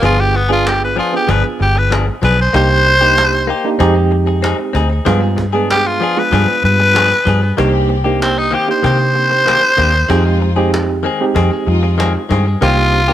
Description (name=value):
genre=straight-eighth soul blues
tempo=95 BPM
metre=4/4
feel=straight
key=C minor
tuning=A4 = 441 Hz
part: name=breathy tenor saxophone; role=melody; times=0.0-13.1 s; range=B3 to C5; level=-14 LUFS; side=equal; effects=none
part: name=barky reed electric piano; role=accompaniment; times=0.0-13.1 s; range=Ab3 to Bb4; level=-19 LUFS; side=right 5 dB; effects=overdrive, fast tremolo
part: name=direct-recorded clean electric guitar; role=stabs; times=0.0-13.1 s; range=Eb3 to Ab4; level=-20 LUFS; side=left 5 dB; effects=spring reverb, digital delay
part: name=vintage muted fingered electric bass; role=bass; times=0.0-13.1 s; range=G1 to C3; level=-15 LUFS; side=equal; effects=none
part: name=cajon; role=drums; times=0.0-13.0 s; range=none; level=-24 LUFS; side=equal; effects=none
part: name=dark studio string section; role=sustained chords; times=7.6-13.1 s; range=Ab3 to G4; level=-24 LUFS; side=left 2 dB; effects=none
room=little or no reverb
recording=none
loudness=-11 LUFS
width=side -12 dB against mid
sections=0.0-7.6 A section; 7.6-13.1 A section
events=tenor saxophone solo 0.0-13.1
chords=0.0 G7b9; 2.5 Cm7; 3.8 Fm7; 5.1 G7b9; 7.6 Cm7; 10.1 Fm7; 12.6 Cm7